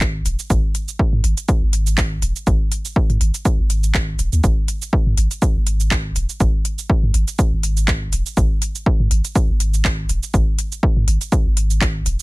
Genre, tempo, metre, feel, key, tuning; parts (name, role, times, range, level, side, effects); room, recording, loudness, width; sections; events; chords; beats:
minimal techno; 122 BPM; 4/4; swing 55% on 16ths; A4 = 442 Hz
punchy sub bass; bass; 0.0-12.2 s; D#1 to G#2; -19 LUFS; equal; sidechain pumping
electronic kick drum; drums; 0.0-11.9 s; -18 LUFS; equal
minimal click drum kit; drums; 0.0-12.2 s; cabasa, handclaps, hi-hat; -24 LUFS; right 2 dB
little or no reverb; -16 LUFS; side -22 dB against mid
0.0-12.2 A section
0.01 | 0.50 0.99 1.49 1.98 | 2.47 2.96 3.45 3.94 | 4.44 4.93 5.42 5.91 | 6.40 6.90 7.39 7.88 | 8.37 8.86 9.36 9.85 | 10.34 10.83 11.32 11.81